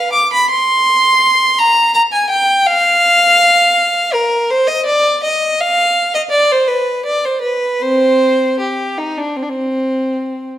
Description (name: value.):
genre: classical, baroque-style suite movement for unaccompanied violin.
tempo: 73-84 BPM.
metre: 4/4.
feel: rubato.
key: C minor.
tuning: A4 = 440 Hz.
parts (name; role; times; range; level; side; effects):
rich violin; solo; 0.0-10.5 s; C4 to D6; -11 LUFS; equal; none.
room: moderate recital hall reverb, RT60 1.3 s.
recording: none.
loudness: -11 LUFS.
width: side -12 dB against mid.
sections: 0.0-10.6 A section.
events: none.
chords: none.